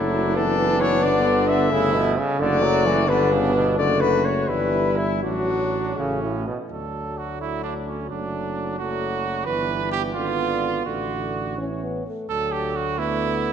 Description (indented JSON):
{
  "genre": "classical, brass quintet",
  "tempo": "80-90 BPM (dotted quarters)",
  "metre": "6/8",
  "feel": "rubato",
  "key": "D major",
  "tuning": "A4 = 440 Hz",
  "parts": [
    { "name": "mellow cornet", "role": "melody", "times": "0.0-13.5 s", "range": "E4 to E5", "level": "-26 LUFS", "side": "left 6 dB", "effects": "none" },
    { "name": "clear trumpet", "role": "second line", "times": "0.0-13.5 s", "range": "C#4 to B4", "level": "-27 LUFS", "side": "right 7 dB", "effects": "none" },
    { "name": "clear trombone", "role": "accompaniment", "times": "0.0-13.5 s", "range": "A2 to A3", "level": "-27 LUFS", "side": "right 3 dB", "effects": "none" },
    { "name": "mellow French horn", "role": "accompaniment", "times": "0.0-13.5 s", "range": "F#3 to C#4", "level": "-27 LUFS", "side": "left 2 dB", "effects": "none" },
    { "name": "dark bass trombone", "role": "bass", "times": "0.0-13.5 s", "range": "F#1 to D2", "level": "-27 LUFS", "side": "right 1 dB", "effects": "none" }
  ],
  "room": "wet scoring stage reverb, RT60 1.6 s",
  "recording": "dark, warm production",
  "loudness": "-20 LUFS",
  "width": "side -8 dB against mid",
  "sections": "0.0-6.7 A section; 6.7-13.5 B section",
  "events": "none",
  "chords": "0.0 D/F#; 1.0 G; 1.7 A7/G; 2.4 D/F#; 3.1 G; 3.8 D/F#; 4.5 Em/G; 5.2 D/A; 6.0 A; 6.7 D; 8.1 D/F#; 9.5 Em7/G; 10.2 G#dim7; 10.9 D/A; 11.6 A; 12.3 D"
}